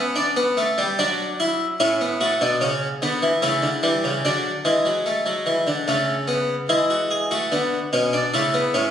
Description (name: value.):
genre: classical, baroque-style 4-part fugue for harpsichord.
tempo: 73 BPM.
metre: 3/4.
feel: straight.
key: D major.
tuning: A4 = 440 Hz.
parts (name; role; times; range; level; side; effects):
harpsichord; solo; 0.0-8.9 s; A2 to G#4; -19 LUFS; equal; none.
room: wet recital hall reverb, RT60 1.6 s.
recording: recorded on a phone in the room, club reverb, compression.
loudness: -19 LUFS.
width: side -9 dB against mid.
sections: 0.0-6.7 A section; 6.7-8.9 B section.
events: none.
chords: 0.0 G; 1.0 D/F#; 1.8 A; 3.4 A7/C#; 4.2 D; 5.9 A/C#; 6.7 E7; 8.3 A/C#.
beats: 0.16 0.98 | 1.79 2.61 3.42 | 4.24 5.05 5.87 | 6.70 7.52 8.34.